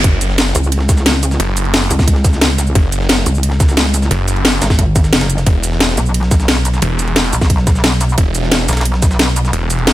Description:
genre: dark technical drum and bass.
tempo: 177 BPM.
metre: 4/4.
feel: straight.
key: unclear.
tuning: A4 = 440 Hz.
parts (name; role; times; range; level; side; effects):
snarling distorted saw bass; bass; 0.0-9.9 s; E1 to F#1; -16 LUFS; equal; distortion.
breakbeat sampler-style drum kit; drums; 0.0-9.9 s; hi-hat, ride cymbal, snare drum; -25 LUFS; right 1 dB; high-pass filter on cymbals, high-pass filter on snare, high-pass filter on hats.
drum and bass drum kit; drums; 0.0-9.9 s; cabasa, hi-hat, snare drum; -15 LUFS; equal; overdrive.
electronic kick drum; drums; 0.0-9.1 s; none; -12 LUFS; equal; overdrive.
pulsing pluck wobble bass; bass; 0.6-9.5 s; F#1 to C#2; -14 LUFS; equal; chorus.
room: little or no reverb.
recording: none.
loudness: -11 LUFS.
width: side -15 dB against mid.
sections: 0.0-9.9 A section.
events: none.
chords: 0.0 F#5; 5.5 E5.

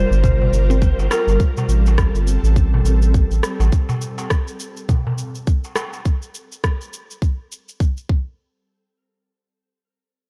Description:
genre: organic downtempo.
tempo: 103 BPM.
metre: 4/4.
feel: swing 58% on 16ths.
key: unclear.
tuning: A4 = 438 Hz.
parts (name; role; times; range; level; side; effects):
electric slide guitar; melody; 0.0-1.4 s; Bb4 to C5; -26 LUFS; equal; tape echo.
ethereal airy pad; sustained chords; 0.0-3.7 s; G3 to Bb4; -30 LUFS; equal; ensemble chorus, built-in reverb, sidechain pumping.
mallet-like synth pluck; arpeggios; 0.0-1.0 s; G3 to C4; -30 LUFS; equal; chorus, tape echo.
round analog bass; bass; 0.0-3.7 s; G1 to A1; -18 LUFS; equal; sidechain pumping.
electronic shaker and rim click; drums; 0.1-8.1 s; none; -30 LUFS; equal; none.
electronic kick drum; drums; 0.2-8.2 s; none; -20 LUFS; equal; none.
darbuka; percussion; 0.2-6.0 s; none; -28 LUFS; equal; none.
room: little or no reverb.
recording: dark, warm production.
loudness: -19 LUFS.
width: mono.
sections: 0.0-8.4 A section; 8.4-10.3 B section.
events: none.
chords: 0.0 Gm7; 1.4 Am7; 3.7 N.C..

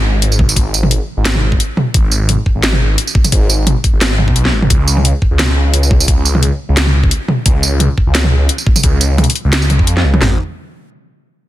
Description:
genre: half-time drum and bass.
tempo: 174 BPM.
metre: 4/4.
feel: swing 54% on 16ths, half-time.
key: G# dorian.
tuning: A4 = 440 Hz.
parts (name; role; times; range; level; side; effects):
phased detuned saw bass; bass; 0.0-10.4 s; G#1 to E#2; -13 LUFS; equal; phaser.
drum and bass drum kit; drums; 0.2-10.2 s; hi-hat, snare drum, tambourine, toms; -15 LUFS; equal; none.
drum and bass drum kit; drums; 0.4-10.3 s; kick drum, snare drum, toms; -13 LUFS; equal; none.
room: little or no reverb.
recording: dense, heavily limited modern master.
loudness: -10 LUFS.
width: side -14 dB against mid.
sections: 0.0-10.2 A section; 10.2-11.5 B section.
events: drop 0.0-10.2.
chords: none.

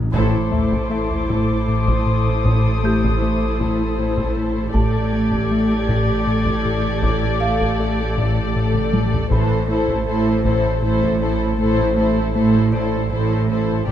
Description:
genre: cinematic, suspense film score.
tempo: 79 BPM.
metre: 3/4.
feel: straight.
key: A minor.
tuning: A4 = 441 Hz.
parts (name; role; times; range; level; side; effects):
pure sine sub bass; drone; 0.0-13.9 s; A1; -27 LUFS; equal; none.
muted symphonic violin section; melody; 0.1-13.9 s; C5 to D5; -26 LUFS; left 3 dB; none.
muted symphonic violin section; second line; 0.1-13.9 s; G4 to A4; -28 LUFS; left 4 dB; none.
muted symphonic viola section; accompaniment; 0.1-13.9 s; E3 to G4; -28 LUFS; equal; none.
smooth synth bass; riff; 0.1-13.9 s; A2 to A3; -22 LUFS; left 2 dB; none.
muted studio cello section; bass; 0.1-13.9 s; A2; -25 LUFS; right 4 dB; none.
muted symphonic double bass section; bass; 0.1-13.9 s; A1; -25 LUFS; right 4 dB; none.
taiko ensemble; drums; 0.1-13.9 s; none; -25 LUFS; equal; none.
muted symphonic violin section; texture; 0.1-8.9 s; C6 to G#6; -29 LUFS; left 4 dB; none.
music box; texture; 0.9-13.9 s; D4 to G6; -32 LUFS; right 2 dB; none.
room: light reverb.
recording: dark, warm production.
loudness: -16 LUFS.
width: side -10 dB against mid.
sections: 0.1-13.9 A section.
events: band accent 0.1-0.9; drum fill 8.7-9.3.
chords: 0.1 Am; 4.7 Gsus2/A; 9.3 Am.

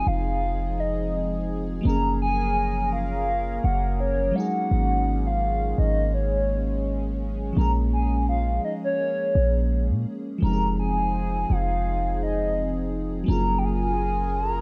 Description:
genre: R&B.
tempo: 84 BPM.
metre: 4/4.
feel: swing 54% on 16ths.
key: Bb minor.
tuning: A4 = 440 Hz.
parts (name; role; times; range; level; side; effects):
hollow clarinet-like synth lead; melody; 0.0-14.6 s; Db5 to Bb5; -29 LUFS; equal; chorus, tape echo.
FM electric piano with soft pad layer; accompaniment; 0.0-14.6 s; F3 to Ab4; -33 LUFS; equal; chorus, phaser.
chorused pulse-width pad; sustained chords; 0.0-14.6 s; F3 to Bb4; -35 LUFS; equal; none.
warm 808-style bass; bass; 0.0-14.6 s; F1 to Bb2; -28 LUFS; equal; none.
room: digital ambience.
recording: none.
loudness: -25 LUFS.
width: mono.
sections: 0.0-14.6 A section.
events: none.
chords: 0.0 Fm7; 1.9 Gbmaj9; 4.4 Ab7sus4; 7.6 Bbm7; 10.4 Fm7; 13.3 Gbmaj9.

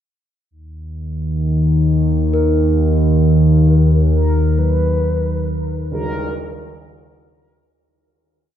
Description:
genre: dark ambient drone.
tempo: 66 BPM.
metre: 4/4.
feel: straight.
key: Eb minor.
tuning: A4 = 441 Hz.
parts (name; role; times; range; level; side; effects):
analog drone; drone; 0.9-7.8 s; Eb2 to Eb3; -14 LUFS; equal; chorus.
gamelan-type bronze metallophone; arpeggios; 2.3-8.6 s; Gb3 to Bb4; -26 LUFS; left 3 dB; tape echo.
mellow horn-like synth lead; melody; 4.1-6.8 s; Bb4 to Cb5; -24 LUFS; equal; chorus, tape echo.
tam-tam; percussion; 5.9-6.1 s; none; -27 LUFS; right 2 dB; low-pass filter on cymbals.
room: moderate huge ambient reverb, RT60 8.0 s.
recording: dark, warm production.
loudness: -14 LUFS.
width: side -10 dB against mid.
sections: 0.5-7.7 A section.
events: fade-in on drum 0.5-7.7; fade-out on bronze metallophone 0.5-7.7; fade-out 4.1-7.7.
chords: 0.5 Eb5.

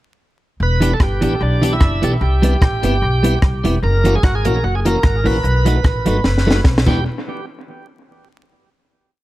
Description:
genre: ska.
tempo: 149 BPM.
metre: 4/4.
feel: swing 55% on 8ths.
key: E minor.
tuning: A4 = 438 Hz.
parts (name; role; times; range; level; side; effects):
bright tonewheel organ; melody; 0.6-7.0 s; D4 to B4; -22 LUFS; right 1 dB; overdrive, slow rotary speaker, analog delay.
upright bass; bass; 0.6-7.0 s; E1 to C2; -17 LUFS; equal; tube saturation.
clean electric guitar; accompaniment; 0.8-7.0 s; E3 to G4; -22 LUFS; right 2 dB; analog delay.
tonewheel organ; stabs; 0.8-7.0 s; C4 to B4; -25 LUFS; left 3 dB; fast rotary speaker.
compact cocktail drum kit; drums; 0.8-7.0 s; crash cymbal, hi-hat, kick drum, rim click, snare drum; -17 LUFS; equal; analog delay.
room: light reverb, studio ambience.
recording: vinyl crackle.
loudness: -13 LUFS.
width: side -16 dB against mid.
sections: 0.6-7.1 head; 7.1-8.7 final hit.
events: drum fill 6.2-7.1.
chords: 0.6 Em7; 2.2 Cmaj7; 3.8 F#7; 5.4 B7; 6.8 Em7; 7.1 N.C..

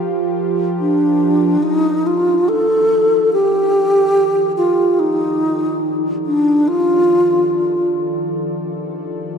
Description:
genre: ambient.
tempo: free time.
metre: none.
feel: none.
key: unclear.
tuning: A4 = 441 Hz.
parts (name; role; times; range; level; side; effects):
warm analog pad; sustained chords; 0.0-9.4 s; Eb3 to F5; -23 LUFS; right 2 dB; chorus.
breathy mellow wooden-headed alto flute; melody; 0.8-7.9 s; D4 to A4; -14 LUFS; equal; diffuse ambient delay.
room: wet cathedral reverb, RT60 6.9 s.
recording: dark, warm production.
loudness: -13 LUFS.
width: side -6 dB against mid.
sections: 0.0-1.6 A section; 1.6-9.4 B section.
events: fade-in on analog synth pad 1.6-9.4.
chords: 0.0 Fsus24; 1.6 F13.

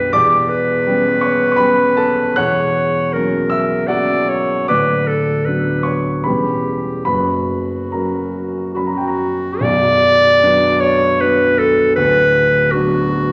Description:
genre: classical, romantic duo for clarinet and grand piano.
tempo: 66-83 BPM.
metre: 3/4.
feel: rubato.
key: B minor.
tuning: A4 = 440 Hz.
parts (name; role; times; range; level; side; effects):
clear clarinet; melody; 0.0-13.3 s; F#4 to D5; -18 LUFS; equal; none.
dark baby grand piano; accompaniment; 0.0-13.3 s; B0 to F#6; -20 LUFS; equal; none.
room: wet recital hall reverb, RT60 1.5 s.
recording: none.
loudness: -16 LUFS.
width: mono.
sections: 0.0-9.6 A section; 9.6-13.3 A section.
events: none.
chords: 0.1 C#m7b5/E; 2.4 F#7/E; 4.7 Bm/D; 6.3 C#dim/E; 7.1 F#; 9.6 Bm; 12.0 Bm/D.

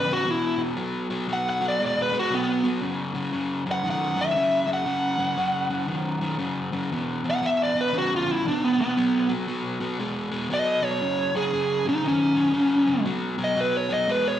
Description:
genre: blues.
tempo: 117 BPM.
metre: 4/4.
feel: swing 64% on 8ths.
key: B major.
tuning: A4 = 441 Hz.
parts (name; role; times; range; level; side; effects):
smooth overdriven lead guitar; melody; 0.0-14.4 s; B3 to F#5; -23 LUFS; right 1 dB; slapback echo, analog delay.
crunchy overdriven guitar; riff; 0.0-14.4 s; E2 to G#3; -27 LUFS; left 2 dB; spring reverb, slapback echo.
room: wet club reverb, RT60 0.7 s.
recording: live gig heard through the venue's PA, club reverb.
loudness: -22 LUFS.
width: side -11 dB against mid.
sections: 0.0-13.1 A section; 13.1-14.4 B section.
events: lead electric guitar solo 13.1-14.4.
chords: 0.0 E5; 0.8 B5; 2.8 F#5; 6.9 E5; 9.0 B5; 11.0 F#sus2; 13.1 B.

